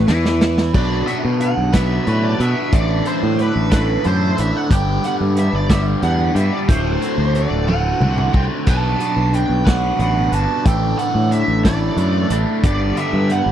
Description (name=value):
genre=psychedelic rock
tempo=60 BPM (dotted quarters)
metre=6/8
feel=straight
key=unclear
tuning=A4 = 440 Hz
part: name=bluesy overdriven lead guitar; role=melody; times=0.0-13.5 s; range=B4 to A5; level=-23 LUFS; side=right 4 dB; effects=wah, distortion, slapback echo
part: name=overdriven semi-hollow guitar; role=riff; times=0.0-13.5 s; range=D2 to B4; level=-20 LUFS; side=equal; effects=phaser
part: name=growling fingered electric bass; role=bass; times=0.0-13.5 s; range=D1 to B2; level=-18 LUFS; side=equal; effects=overdrive
part: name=vintage drum kit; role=drums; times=0.1-13.5 s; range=crash cymbal, hi-hat, kick drum, snare drum, toms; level=-18 LUFS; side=equal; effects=none
room=small room ambience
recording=dry, close 1970s-style studio recording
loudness=-15 LUFS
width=side -10 dB against mid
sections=0.7-13.5 A section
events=drum fill 0.0-0.7, 7.7-8.7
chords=0.0 N.C.; 0.7 Bm7; 2.7 Asus4; 4.7 G; 6.7 D7; 8.7 Bm7; 10.7 Asus4; 12.6 G